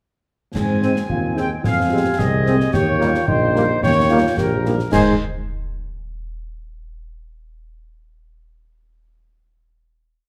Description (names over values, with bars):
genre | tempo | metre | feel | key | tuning
military-style march for wind band | 110 BPM | 2/4 | straight | Ab major | A4 = 440 Hz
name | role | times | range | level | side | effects
warm woodwind section | second line | 0.5-5.1 s | Bb3 to Ab5 | -28 LUFS | equal | none
mellow tuba | bass | 0.5-5.2 s | Bb1 to Ab2 | -22 LUFS | equal | none
dark trumpet section | melody | 0.6-5.2 s | Bb4 to Ab5 | -26 LUFS | equal | none
warm euphonium | second line | 0.6-4.6 s | C4 to Ab4 | -26 LUFS | equal | none
concert snare drum, clash cymbals and concert bass drum | drums | 0.6-5.2 s | none | -28 LUFS | equal | none
warm French horn section | accompaniment | 0.8-5.2 s | Ab3 to Ab4 | -28 LUFS | equal | none
warm trombone section | sustained chords | 0.8-5.2 s | Eb3 to C4 | -28 LUFS | equal | none
room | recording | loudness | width
moderate large studio reverb, RT60 1.1 s | none | -18 LUFS | mono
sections
0.5-4.9 A section; 4.9-6.0 final chord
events
none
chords
0.5 Ab; 1.6 Fm; 2.7 Eb7; 4.9 Ab5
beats
| 0.55 1.09 | 1.64 2.19 | 2.73 3.28 | 3.83 4.38 | 4.92